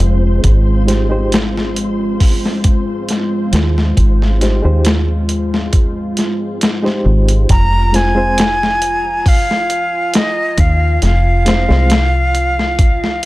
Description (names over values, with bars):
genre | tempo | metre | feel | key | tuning
trip hop | 68 BPM | 4/4 | straight | F minor from 7.5 s | A4 = 437 Hz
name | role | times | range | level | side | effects
dark analog pad | sustained chords | 0.0-13.3 s | Ab3 to F4 | -21 LUFS | left 1 dB | chorus
deep dub fingered electric bass | bass | 0.0-13.2 s | F1 to Eb2 | -14 LUFS | equal | tube saturation
dusty soul sampler-style drum kit | drums | 0.0-13.3 s | hi-hat, kick drum, snare drum | -15 LUFS | equal | overdrive
flickering grainy texture | texture | 0.0-7.5 s | C4 to C5 | -28 LUFS | right 2 dB | built-in reverb
reed electric piano | accompaniment | 0.9-12.0 s | Ab3 to C5 | -21 LUFS | equal | tremolo, tape echo
breathy bright jazz flute | melody | 7.5-13.3 s | Eb5 to Bb5 | -16 LUFS | equal | tape echo
room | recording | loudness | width
little or no reverb | none | -12 LUFS | side -18 dB against mid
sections
0.0-7.5 A section; 7.5-13.3 B section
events
none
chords
0.4 Abmaj7; 7.5 Fm